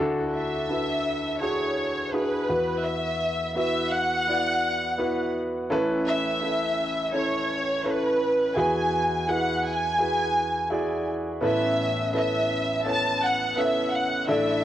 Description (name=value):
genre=pop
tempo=84 BPM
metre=4/4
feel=straight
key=A major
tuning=A4 = 440 Hz
part: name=warm concert grand piano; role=accompaniment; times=0.0-14.6 s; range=A1 to D5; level=-26 LUFS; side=equal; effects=cassette tape
part: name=warm symphonic violin section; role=melody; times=0.3-14.6 s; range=B4 to A5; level=-25 LUFS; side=equal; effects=cassette tape
room=moderate spring reverb, RT60 2.5 s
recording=home recording on cassette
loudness=-23 LUFS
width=side -12 dB against mid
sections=0.0-11.4 A section; 11.4-14.6 B section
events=none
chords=0.0 Dadd9; 2.5 Esus2; 5.7 Aadd9; 8.6 Eadd9; 11.4 Aadd9